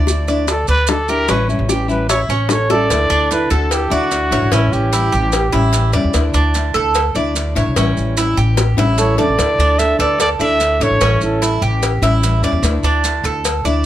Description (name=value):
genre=latin, Cuban son and guajira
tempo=148 BPM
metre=4/4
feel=straight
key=unclear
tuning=A4 = 440 Hz
part: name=nylon-string guitar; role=accompaniment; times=0.0-13.9 s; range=D3 to E4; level=-22 LUFS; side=left 4 dB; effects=none
part: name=Cuban tres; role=arpeggios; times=0.0-13.9 s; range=C#4 to D5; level=-20 LUFS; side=right 4 dB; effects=none
part: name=upright bass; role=bass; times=0.0-13.9 s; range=A1 to E2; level=-18 LUFS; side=equal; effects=none
part: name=bongos and cowbell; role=percussion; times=0.1-13.7 s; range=none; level=-23 LUFS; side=left 5 dB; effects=none
part: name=maracas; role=percussion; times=0.1-13.9 s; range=none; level=-25 LUFS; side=right 5 dB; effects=none
part: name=breathy trumpet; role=melody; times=0.5-5.9, 9.0-11.6 s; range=E4 to E5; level=-18 LUFS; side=equal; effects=none
part: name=nylon-string guitar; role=second line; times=2.5-5.9, 9.0-11.6 s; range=C#4 to B4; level=-23 LUFS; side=right 4 dB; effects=none
room=little or no reverb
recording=close, detailed microphones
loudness=-13 LUFS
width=side -12 dB against mid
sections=0.0-2.9 A section; 2.9-13.9 B section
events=trumpet solo 0.0-2.9; drum fill 2.7, 8.6-9.4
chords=0.0 Dsus2; 1.3 A7; 2.9 Dsus2; 4.5 A7; 6.1 Dsus2; 7.8 A7; 9.4 Dsus2; 11.0 A7; 12.6 Dsus2